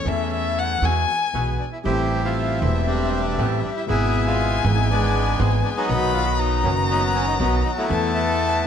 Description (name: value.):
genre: tango.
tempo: 119 BPM.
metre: 4/4.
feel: rubato.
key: A harmonic minor.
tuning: A4 = 440 Hz.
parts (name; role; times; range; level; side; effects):
dark violin; second line; 0.0-8.7 s; E5 to B5; -25 LUFS; left 6 dB; none.
warm concert grand piano; accompaniment; 0.0-8.6 s; E1 to A4; -26 LUFS; left 4 dB; none.
bandoneon; stabs; 0.0-8.7 s; A3 to E5; -34 LUFS; right 8 dB; none.
upright bass; bass; 0.1-8.6 s; E1 to E2; -23 LUFS; right 2 dB; none.
bandoneon; melody; 1.3-8.7 s; F#3 to A4; -24 LUFS; equal; none.
room: light reverb.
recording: close, detailed microphones.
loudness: -19 LUFS.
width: side -8 dB against mid.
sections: 0.0-1.9 A section; 1.9-8.7 B section.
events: violin solo 0.0-1.9.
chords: 0.0 A/E; 0.8 Eadd9; 1.9 Am7; 3.9 E/G#; 5.9 B; 7.9 Esus4.